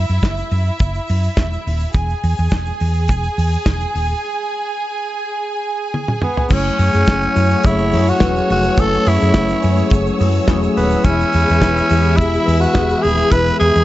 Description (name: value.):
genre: disco.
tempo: 106 BPM.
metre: 4/4.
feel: straight.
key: F# minor.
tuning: A4 = 440 Hz.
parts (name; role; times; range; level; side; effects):
rich studio violin section; second line; 0.0-13.8 s; C#4 to G#5; -24 LUFS; right 2 dB; none.
hollow-body short-scale fingered electric bass; bass; 0.0-13.8 s; D#1 to F#2; -18 LUFS; equal; none.
egg shaker; percussion; 0.1-13.8 s; none; -45 LUFS; right 4 dB; none.
damped 70s drum kit; drums; 0.2-13.7 s; crash cymbal, hi-hat, kick drum, snare drum, toms; -19 LUFS; equal; none.
growling tenor saxophone; melody; 6.2-13.8 s; B3 to B4; -17 LUFS; equal; none.
mellow tine electric piano; accompaniment; 6.5-13.8 s; E3 to B4; -19 LUFS; left 3 dB; analog chorus.
warm studio string section; sustained chords; 6.5-13.8 s; A3 to E6; -26 LUFS; left 1 dB; none.
room: light reverb, small room ambience.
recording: dark, warm production, nothing above 7.8 kHz.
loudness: -14 LUFS.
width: side -15 dB against mid.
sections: 0.0-6.5 A section; 6.5-13.8 B section.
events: break 4.2-6.5; drum fill 5.9-6.5.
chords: 0.0 Esus2; 1.9 E; 6.5 F#m7; 11.0 E.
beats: 0.23 0.80 1.37 | 1.94 2.52 3.09 3.66 | 4.23 4.80 5.37 5.94 | 6.51 7.07 7.64 8.21 | 8.78 9.34 9.91 10.48 | 11.05 11.61 12.18 12.75 | 13.32.